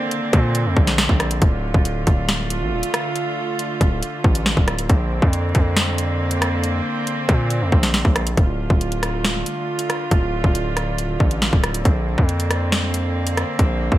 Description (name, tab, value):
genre	hip hop, drill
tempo	138 BPM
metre	4/4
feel	half-time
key	D minor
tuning	A4 = 440 Hz
part	rich chamber string section	sustained chords	0.0-14.0 s	D3 to F4	-24 LUFS	right 1 dB	none
part	drill drum kit	drums	0.1-14.0 s	hi-hat, kick drum, rim click, snare drum	-18 LUFS	equal	none
part	distorted 808-style bass	bass	0.3-14.0 s	D1 to Bb2	-21 LUFS	equal	distortion
room	light reverb, digital ambience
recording	bright 1980s-style digital production, vinyl crackle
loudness	-17 LUFS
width	side -14 dB against mid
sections	0.0-8.4 A section; 8.4-14.0 B section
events	none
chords	0.0 Bbadd9; 1.4 Dm; 4.9 Bbadd9; 8.4 Dm; 11.9 Bbadd9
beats	0.11 0.55 0.98 | 1.42 1.85 2.29 2.72 | 3.16 3.59 4.03 4.46 | 4.90 5.33 5.76 6.20 | 6.63 7.07 7.50 7.94 | 8.37 8.81 9.24 9.68 | 10.11 10.55 10.98 11.42 | 11.85 12.29 12.72 13.16 | 13.59